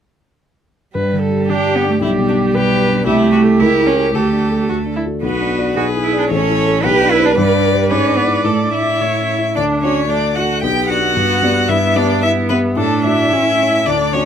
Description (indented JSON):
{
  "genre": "quick classical-period movement for piano quartet",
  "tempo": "112 BPM",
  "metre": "2/4",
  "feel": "straight",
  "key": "G major, D major from 5.2 s",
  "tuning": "A4 = 440 Hz",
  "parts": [
    { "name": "dark baby grand piano", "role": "accompaniment", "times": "0.9-14.3 s", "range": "A1 to E5", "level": "-18 LUFS", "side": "left 3 dB", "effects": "none" },
    { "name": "warm viola", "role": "accompaniment", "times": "0.9-14.3 s", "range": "A3 to D5", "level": "-19 LUFS", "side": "right 2 dB", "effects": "none" },
    { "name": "clear cello", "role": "second line", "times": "1.0-14.2 s", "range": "G3 to G4", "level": "-17 LUFS", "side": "right 5 dB", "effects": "none" },
    { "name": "clear violin", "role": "melody", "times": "1.5-14.3 s", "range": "D4 to G5", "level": "-19 LUFS", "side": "left 3 dB", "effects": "none" }
  ],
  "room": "light reverb",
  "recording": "close, detailed microphones",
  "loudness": "-13 LUFS",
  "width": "side -8 dB against mid",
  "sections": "1.0-9.6 A section; 9.6-14.3 B section",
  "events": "none",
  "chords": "1.0 G; 2.0 G/B; 3.1 Am7/C; 3.6 C#dim7; 4.1 Dsus4; 4.7 D; 5.2 Bm; 5.8 E7/B; 6.3 A; 6.8 G/B; 7.4 G; 7.9 E7/G#; 8.4 Asus4; 9.0 A; 9.6 D; 10.6 G/B; 11.2 G; 11.7 Em/G; 12.8 D/A; 13.3 A"
}